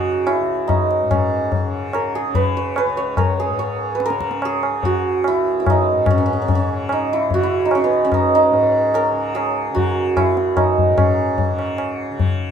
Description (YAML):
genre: indian classical, Hindustani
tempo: 146 BPM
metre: 3/4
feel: straight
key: C# raga kafi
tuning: A4 = 440 Hz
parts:
  - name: santur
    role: melody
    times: 0.0-12.5 s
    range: B3 to C#5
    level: -18 LUFS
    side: right 2 dB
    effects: none
  - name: tanpura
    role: drone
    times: 0.0-12.5 s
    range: C#2 to C#3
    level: -27 LUFS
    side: left 2 dB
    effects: none
  - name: tabla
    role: percussion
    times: 0.3-12.3 s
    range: none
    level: -21 LUFS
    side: left 3 dB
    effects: none
room: light reverb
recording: minimal, uncompressed stereo recording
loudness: -16 LUFS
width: side -8 dB against mid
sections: 0.0-6.1 A section; 6.1-12.5 B section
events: speeding up 0.0-12.5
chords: none